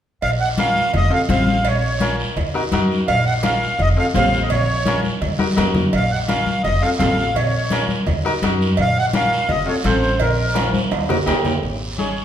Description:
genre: latin, cumbia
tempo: 168 BPM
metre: 4/4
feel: straight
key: Bb harmonic minor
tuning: A4 = 445 Hz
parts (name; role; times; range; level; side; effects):
- accordion; melody; 0.2-12.2 s; Bb4 to Gb5; -21 LUFS; equal; light tremolo tuning
- upright bass; bass; 0.2-12.2 s; F1 to Gb2; -22 LUFS; equal; none
- cowbell and timbales; percussion; 0.2-11.5 s; none; -26 LUFS; right 4 dB; none
- guiro; percussion; 0.2-12.2 s; none; -30 LUFS; right 3 dB; none
- bright upright piano; accompaniment; 0.6-12.2 s; C4 to C5; -24 LUFS; left 2 dB; none
- congas; percussion; 0.6-12.2 s; none; -24 LUFS; left 2 dB; none
room: wet recital hall reverb, RT60 1.5 s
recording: recorded in a church or concert hall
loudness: -16 LUFS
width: side -10 dB against mid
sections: 0.2-11.6 A section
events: drum fill 5.4-5.9, 10.6-11.6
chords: 0.2 Bbm; 0.9 F; 1.7 Bbm; 2.4 Ebm; 3.1 Bbm; 3.8 F; 4.5 Bbm; 5.2 Ebm; 5.9 Bbm; 6.6 F; 7.4 Bbm; 8.1 Ebm; 8.8 Bbm; 9.5 F; 10.2 Bbm; 10.9 Ebm; 11.3 Eb; 11.6 Absus4

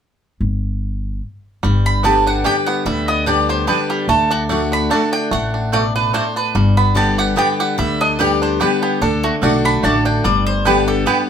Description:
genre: bluegrass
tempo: 146 BPM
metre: 3/4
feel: swing 54% on 8ths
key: G major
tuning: A4 = 445 Hz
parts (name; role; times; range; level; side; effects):
- upright bass; bass; 0.4-11.0 s; G1 to D2; -20 LUFS; equal; none
- picked steel-string acoustic guitar; accompaniment; 1.6-11.3 s; G2 to G4; -19 LUFS; left 3 dB; none
- bluegrass banjo; arpeggios; 1.6-11.3 s; G3 to G4; -23 LUFS; right 2 dB; none
- mandolin; melody; 1.9-11.2 s; F#4 to B5; -19 LUFS; right 2 dB; none
- mandolin; stabs; 2.0-11.2 s; A3 to G5; -21 LUFS; right 5 dB; none
room: moderate small room ambience, RT60 0.5 s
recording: minimal, uncompressed stereo recording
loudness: -14 LUFS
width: side -8 dB against mid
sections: 0.4-1.6 A section; 1.6-11.3 B section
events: none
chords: 0.4 N.C.; 1.6 G; 4.1 D; 6.6 G; 9.0 D; 10.2 G

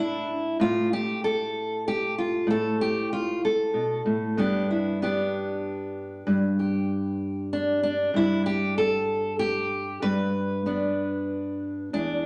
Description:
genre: folk, solo fingerstyle acoustic guitar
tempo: 96 BPM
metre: 3/4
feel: straight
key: unclear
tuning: A4 = 439 Hz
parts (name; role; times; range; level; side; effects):
- fingerpicked steel-string acoustic guitar; solo; 0.0-12.3 s; E2 to B4; -26 LUFS; equal; none
room: wet large studio reverb, RT60 1.3 s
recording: none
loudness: -26 LUFS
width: mono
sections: 0.0-11.9 A section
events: none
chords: 0.0 N.C.; 0.6 G7sus2/A; 4.4 G

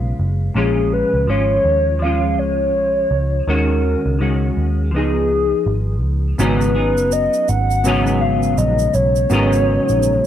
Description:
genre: indie pop, bedroom pop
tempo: 82 BPM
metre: 4/4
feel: swing 60% on 16ths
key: G# dorian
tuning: A4 = 436 Hz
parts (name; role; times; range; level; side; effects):
- hollow clarinet-like synth lead; melody; 0.0-10.3 s; G#4 to F#5; -19 LUFS; left 1 dB; wide subtle chorus
- semi-hollow electric guitar; accompaniment; 0.0-10.3 s; G#2 to G#4; -21 LUFS; left 2 dB; ensemble chorus, warbly pitch drift
- vintage muted picked electric bass; bass; 0.0-10.2 s; F#1 to D#2; -19 LUFS; equal; none
- tine electric piano; accompaniment; 6.4-10.3 s; B3 to A#5; -24 LUFS; right 5 dB; none
- tube shaker; percussion; 6.4-10.2 s; none; -32 LUFS; right 19 dB; none
room: light reverb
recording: dry, close 1970s-style studio recording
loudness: -15 LUFS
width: side -10 dB against mid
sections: 0.0-6.4 A section; 6.4-10.3 B section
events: none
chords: 0.0 C#7; 0.6 A#m7; 3.5 D#m7; 4.9 C#9; 6.4 G#m11

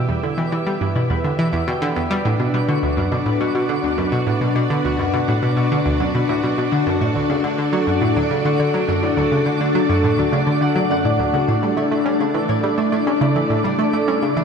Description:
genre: ambient, sequencer-driven space music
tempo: 104 BPM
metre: 4/4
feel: straight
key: unclear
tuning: A4 = 440 Hz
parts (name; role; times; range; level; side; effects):
- string machine, full ensemble; sustained chords; 0.0-14.4 s; A3 to E5; -24 LUFS; right 2 dB; ensemble chorus, shimmer reverb
- concert harp; arpeggios; 0.0-14.4 s; D4 to E6; -21 LUFS; moving between left 6 dB and equal; auto-pan, low-pass filter, tape echo, shimmer reverb
- analog pluck; riff; 0.0-14.4 s; D2 to C#4; -20 LUFS; right 1 dB; chorus, tape echo, shimmer reverb
- twinkling granular texture; texture; 0.0-14.4 s; D5; -31 LUFS; right 4 dB; built-in reverb, shimmer reverb
room: moderate plate reverb, RT60 2.5 s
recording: none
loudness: -16 LUFS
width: side -6 dB against mid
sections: 0.0-14.4 A section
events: fade-in on string machine 0.0-14.4; fade-in on synth texture 0.0-14.4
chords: 0.0 Em; 2.3 Bm; 6.9 D; 11.5 Asus4

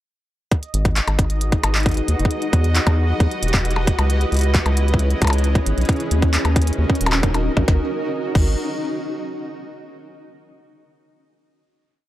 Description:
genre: IDM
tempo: 134 BPM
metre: 4/4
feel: straight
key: G# minor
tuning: A4 = 439 Hz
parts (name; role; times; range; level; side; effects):
- granular cloud pad; sustained chords; 1.1-7.9 s; C#4 to F#5; -25 LUFS; equal; built-in reverb, vintage 12-bit sampler grit
- electronic kick drum; drums; 0.5-8.4 s; none; -18 LUFS; equal; overdrive
- glitchy drum kit; drums; 0.5-8.4 s; crash cymbal, handclaps, hi-hat, percussion blips, snare drum; -24 LUFS; left 1 dB; overdrive
- bubbling stepped-filter texture; texture; 0.5-7.7 s; D#5; -32 LUFS; right 1 dB; chorus, built-in reverb, sidechain pumping
- round analog bass; bass; 0.7-8.6 s; D#1 to E2; -19 LUFS; equal; none
room: little or no reverb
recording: dry, gritty hardware recording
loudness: -17 LUFS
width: side -14 dB against mid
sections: 0.5-7.7 groove; 7.7-9.5 final chord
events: none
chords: 0.5 G#m7; 2.3 Emadd9; 4.1 C#m7; 5.9 D#m7; 7.7 G#m7

